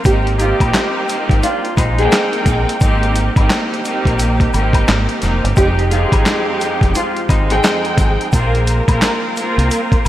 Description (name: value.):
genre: hip hop, boom-bap hip-hop.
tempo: 87 BPM.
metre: 4/4.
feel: swing 62% on 16ths.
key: unclear.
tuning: A4 = 438 Hz.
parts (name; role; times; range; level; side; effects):
clear studio string section; accompaniment; 0.0-10.1 s; F2 to G5; -18 LUFS; right 1 dB; cassette tape, high-pass filter, low-pass filter.
tube shaker and woodblock; percussion; 0.0-10.1 s; none; -31 LUFS; left 4 dB; none.
nylon-string guitar; melody; 0.1-8.3 s; Eb4 to Ab4; -22 LUFS; right 1 dB; ensemble chorus, high-pass filter, low-pass filter, diffuse ambient delay.
deep dub fingered electric bass; bass; 0.1-10.1 s; F1 to C2; -17 LUFS; equal; none.
dusty soul sampler-style drum kit; drums; 0.1-10.1 s; handclaps, hi-hat, kick drum, snare drum; -17 LUFS; equal; none.
warm horn section; stabs; 0.4-7.8 s; Ab3 to Ab4; -25 LUFS; left 2 dB; high-pass filter, low-pass filter, diffuse ambient delay.
room: moderate huge ambient reverb, RT60 4.6 s.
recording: dreamy mix soaked in reverb, vinyl crackle.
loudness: -13 LUFS.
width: side -13 dB against mid.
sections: 0.0-10.1 A section.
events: none.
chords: 0.1 Abmaj7; 5.6 Fm7; 8.3 Bbsus2.